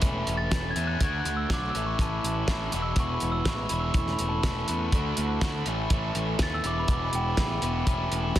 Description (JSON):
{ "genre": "indie rock", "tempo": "122 BPM", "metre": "4/4", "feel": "straight", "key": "unclear", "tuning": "A4 = 439 Hz", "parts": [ { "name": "overdriven electric guitar", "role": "riff", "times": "0.0-8.4 s", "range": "E2 to F#4", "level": "-30 LUFS", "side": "equal", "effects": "none" }, { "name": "growling picked electric bass", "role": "bass", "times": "0.0-8.4 s", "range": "E1 to E2", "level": "-31 LUFS", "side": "equal", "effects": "overdrive" }, { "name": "cloth-damped thuddy drum kit", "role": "drums", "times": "0.0-8.4 s", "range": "hi-hat, kick drum, snare drum", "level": "-27 LUFS", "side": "equal", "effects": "none" }, { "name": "glockenspiel with rubber mallets", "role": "melody", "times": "0.4-7.9 s", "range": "G5 to A6", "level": "-32 LUFS", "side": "equal", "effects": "slapback echo" }, { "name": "lush unison pad", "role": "sustained chords", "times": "4.9-8.4 s", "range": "E4 to A5", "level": "-42 LUFS", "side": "equal", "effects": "none" } ], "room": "light reverb", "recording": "dense, heavily limited modern master", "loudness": "-25 LUFS", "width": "side -13 dB against mid", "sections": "0.0-8.4 A section", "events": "glockenspiel solo 0.0-8.4", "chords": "0.0 A/E; 1.0 D; 1.7 A; 2.7 E; 3.9 A/E; 4.9 Dadd9; 5.7 A; 6.6 E; 7.9 A/E" }